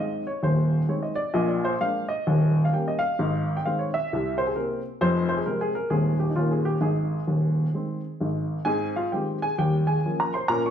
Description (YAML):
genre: jazz, stride piano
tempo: 131 BPM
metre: 4/4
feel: swing 63% on 8ths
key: Ab major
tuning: A4 = 440 Hz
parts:
  - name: warm upright piano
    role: solo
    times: 0.0-10.7 s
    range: Eb1 to Db6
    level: -22 LUFS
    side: equal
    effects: none
room: wet large studio reverb, RT60 1.1 s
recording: band playing live in one room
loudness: -22 LUFS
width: side -9 dB against mid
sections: 0.0-8.7 A section; 8.7-10.7 A section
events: none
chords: 0.0 Ab; 1.3 Bb7; 2.2 Eb7; 3.2 Ab; 4.1 C7; 5.0 Fm; 5.9 Ab/Eb; 6.4 Eb7; 6.8 Ab; 9.6 Eb9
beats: 0.41 0.87 | 1.33 1.79 2.25 2.71 | 3.16 3.62 4.08 4.54 | 5.00 5.46 5.92 6.37 | 6.83 7.29 7.75 8.20 | 8.66 9.12 9.58 10.03 | 10.49